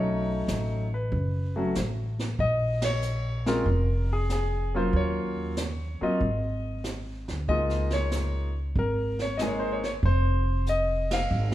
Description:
jazz piano trio; 94 BPM; 4/4; swing 69% on 8ths; Db major; A4 = 442 Hz
clear concert grand piano; melody; 0.0-11.5 s; Gb3 to F5; -28 LUFS; left 1 dB
upright bass; bass; 0.0-11.5 s; F1 to Eb2; -28 LUFS; equal
jazz brush drum kit; drums; 0.5-11.5 s; brushed snare drum, hi-hat, kick drum, ride cymbal, snare drum; -34 LUFS; right 2 dB
moderate recital hall reverb, RT60 1.6 s; recorded in a church or concert hall; -25 LUFS; side -14 dB against mid
0.0-11.5 A section
band accent 2.7-3.0, 11.0-11.3; drum fill 10.7-11.5
0.0 Cb9; 2.4 Bbm7; 4.9 Ebm7; 6.2 Ab5; 7.5 Db69

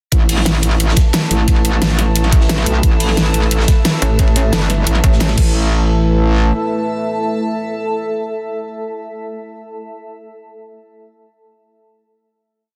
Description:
dark technical drum and bass; 177 BPM; 4/4; straight; A4 = 441 Hz
dark analog pad; sustained chords; 0.7-9.0 s; A3 to A5; -25 LUFS; equal; chorus, phaser, vintage 12-bit sampler grit, sidechain pumping
metallic wobble bass; bass; 0.1-6.5 s; G1 to B1; -17 LUFS; equal; chorus, tube saturation, sidechain pumping
crunchy breakbeat drum kit; drums; 0.1-5.4 s; hi-hat, ride cymbal, snare drum; -29 LUFS; equal; high-pass filter on cymbals, high-pass filter on hats, high-pass filter on snare, high-pass filter on room
dubstep drum kit; drums; 0.1-5.4 s; crash cymbal, hi-hat, snare drum; -21 LUFS; equal; overdrive
electronic kick drum; drums; 0.1-5.4 s; -15 LUFS; equal; overdrive
granular cloud pad; texture; 1.1-9.0 s; A4 to A5; -27 LUFS; equal; built-in reverb, sidechain pumping
metallic wobble bass; bass; 4.0-5.4 s; A1; -17 LUFS; equal; chorus
light reverb; dense, heavily limited modern master; -15 LUFS; mono
0.1-5.5 drop; 5.5-8.3 final note
drop 0.1-5.5
0.1 A5

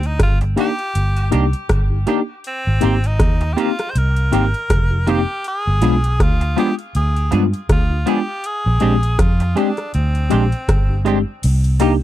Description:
lovers rock reggae; 80 BPM; 4/4; swing 57% on 16ths; C minor; A4 = 440 Hz
edgy tenor saxophone; melody; 0.0-11.0 s; C4 to C5; -25 LUFS; equal; tape echo
vintage muted fingered electric bass; bass; 0.0-12.0 s; F1 to G2; -17 LUFS; equal
booming analog drum machine; drums; 0.0-12.0 s; crash cymbal, hi-hat, kick drum, rim click; -18 LUFS; equal
semi-hollow electric guitar; stabs; 0.4-11.9 s; Eb3 to Ab4; -23 LUFS; right 7 dB; lush chorus
mellow tine electric piano; accompaniment; 0.6-12.0 s; Ab3 to G4; -18 LUFS; left 3 dB; medium stereo tremolo
little or no reverb; dry, close 1970s-style studio recording; -15 LUFS; side -13 dB against mid
0.0-11.4 A section
0.0 Cm9 (rootless); 2.4 Abmaj9; 5.4 G7b9 (rootless); 8.4 Bb13; 11.4 Cm7

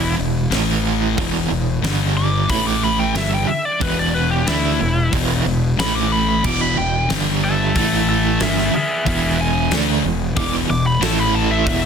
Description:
hard rock; 92 BPM; 4/4; straight; A4 = 440 Hz
biting lead guitar; melody; 0.0-11.9 s; E4 to D6; -22 LUFS; equal; overdrive, digital delay
crunchy overdriven guitar; riff; 0.0-11.9 s; E2 to D4; -22 LUFS; right 12 dB; tremolo
sludgy distorted guitar; riff; 0.0-11.9 s; E2 to D4; -22 LUFS; left 10 dB; overdrive
fuzz fingered electric bass; bass; 0.0-11.9 s; E1 to D2; -23 LUFS; equal; overdrive
huge arena drum kit; drums; 0.5-11.8 s; crash cymbal, hi-hat, kick drum, snare drum; -25 LUFS; left 1 dB
sludgy distorted guitar; riff; 6.4-11.9 s; E2 to D4; -25 LUFS; equal; overdrive
studio ambience; dense, heavily limited modern master; -16 LUFS; side -7 dB against mid
0.0-11.9 A section
lead electric guitar solo 0.0-11.9
0.0 E5; 0.5 A5; 1.2 E5; 1.8 G5; 2.5 A5; 3.2 E5; 5.8 A5; 6.4 E5; 7.1 G5; 7.8 A5; 8.4 E; 11.0 A5

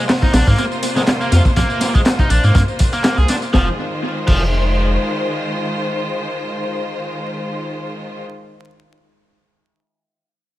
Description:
breakbeat, breaks; 122 BPM; 4/4; swing 55% on 16ths; F minor; A4 = 440 Hz
bright symphonic string section; sustained chords; 0.0-8.2 s; C3 to C5; -22 LUFS; left 1 dB; vintage 12-bit sampler grit, sidechain pumping
biting overdriven guitar; riff; 0.0-4.4 s; F3 to Ab4; -22 LUFS; equal; tube saturation, tape echo
crunchy breakbeat drum kit; drums; 0.1-4.4 s; crash cymbal, hi-hat, kick drum, snare drum; -17 LUFS; equal; tape echo
house drum kit; drums; 0.1-3.5 s; handclaps, ride cymbal, tambourine; -28 LUFS; left 1 dB; tape echo
saturated sub bass; bass; 0.3-5.0 s; F1 to Ab2; -15 LUFS; equal
light reverb, small room reverb; echo-heavy mix, vinyl crackle; -15 LUFS; side -15 dB against mid
0.0-3.5 A section; 3.5-7.5 B section
drop 0.0-3.5
0.0 Bbsus2; 3.5 Fm7

